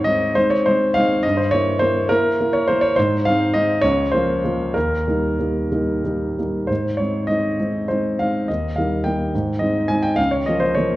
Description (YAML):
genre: classical, romantic character piece for solo piano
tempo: 59-72 BPM (dotted quarters)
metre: 6/8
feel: rubato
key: Ab major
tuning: A4 = 441 Hz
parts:
  - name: warm grand piano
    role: solo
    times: 0.0-11.0 s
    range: Db2 to Ab5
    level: -17 LUFS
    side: equal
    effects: none
room: moderate recital hall reverb, RT60 1.4 s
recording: worn, warbling old tape, cassette tape, warbly pitch drift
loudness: -17 LUFS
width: side -16 dB against mid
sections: 0.0-11.0 A section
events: none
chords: 0.0 Ab; 1.2 Gdim7; 3.0 Ab; 3.8 Bbm/Db; 4.8 Eb; 6.7 Ab; 8.5 Eb; 9.3 Ab; 10.2 Bbm/Db